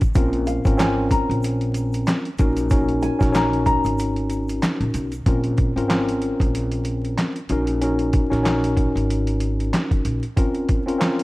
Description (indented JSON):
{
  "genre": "hip hop, boom-bap hip-hop",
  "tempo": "94 BPM",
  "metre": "4/4",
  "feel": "swing 57% on 16ths",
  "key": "Bb minor",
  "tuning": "A4 = 440 Hz",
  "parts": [
    { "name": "nylon-string guitar", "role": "melody", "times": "0.0-5.2 s", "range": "F5 to Bb5", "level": "-26 LUFS", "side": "left 2 dB", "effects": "tape echo" },
    { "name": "mellow tine electric piano", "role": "accompaniment", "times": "0.0-11.2 s", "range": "C4 to Bb4", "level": "-22 LUFS", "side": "left 1 dB", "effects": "medium stereo tremolo, cassette tape" },
    { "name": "boom bap sampler-style drum kit", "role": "drums", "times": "0.0-11.2 s", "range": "handclaps, hi-hat, kick drum, snare drum", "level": "-22 LUFS", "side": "equal", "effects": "none" },
    { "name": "tube shaker", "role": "percussion", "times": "0.0-5.3 s", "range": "none", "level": "-49 LUFS", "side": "right 3 dB", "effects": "none" },
    { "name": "upright bass", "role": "bass", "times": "0.2-10.2 s", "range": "Ab1 to Cb2", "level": "-24 LUFS", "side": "equal", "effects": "none" }
  ],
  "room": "studio reverb",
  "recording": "dry, gritty hardware recording, vinyl crackle",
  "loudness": "-18 LUFS",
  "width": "side -20 dB against mid",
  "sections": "0.0-5.3 A section; 5.3-11.2 B section",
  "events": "break 4.0-5.3",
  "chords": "0.2 Bbmadd9; 2.4 Gb6/Bb; 5.3 Bbmadd9; 7.5 Gb6/Bb; 10.4 Bbmadd9"
}